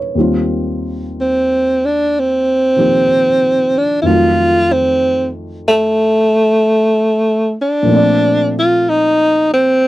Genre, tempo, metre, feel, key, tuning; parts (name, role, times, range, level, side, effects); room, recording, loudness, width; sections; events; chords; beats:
jazz; 62 BPM; 4/4; swing 68% on 8ths; A4 = 440 Hz
dark baby grand piano; accompaniment; 0.0-9.9 s; Eb2 to D5; -18 LUFS; equal
breathy tenor saxophone; melody; 1.2-9.9 s; A3 to F4; -11 LUFS; equal
light reverb; dry, close 1970s-style studio recording; -11 LUFS; side -16 dB against mid
0.0-9.9 A section
0.2 Eb69; 4.0 F7b9; 7.9 Bbmaj9
| 0.16 1.13 2.10 3.08 | 4.04 5.01 5.97 6.93 | 7.90 8.86 9.82